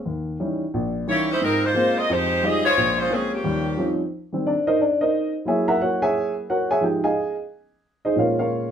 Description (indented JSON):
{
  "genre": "jazz",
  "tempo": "178 BPM",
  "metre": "4/4",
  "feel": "swing 63% on 8ths",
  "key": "unclear",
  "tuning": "A4 = 440 Hz",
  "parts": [
    { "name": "warm baby grand piano", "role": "accompaniment", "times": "0.1-8.7 s", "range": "Bb1 to Bb5", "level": "-21 LUFS", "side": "equal", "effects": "none" },
    { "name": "clear saxophone section", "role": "melody", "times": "1.1-4.0 s", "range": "F3 to Eb5", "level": "-20 LUFS", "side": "left 1 dB", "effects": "none" }
  ],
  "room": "wet studio reverb, RT60 0.5 s",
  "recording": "band playing live in one room",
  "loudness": "-20 LUFS",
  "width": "side -8 dB against mid",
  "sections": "0.0-4.1 A section; 4.1-8.7 B section",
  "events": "grand piano solo 4.1-8.7",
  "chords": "0.1 Eb7b9; 1.4 Ab69; 2.1 Fm9; 2.8 Bbm9; 3.4 Eb13; 4.1 Eb6; 5.5 Gb9; 6.8 Fm7; 8.2 Bbm7"
}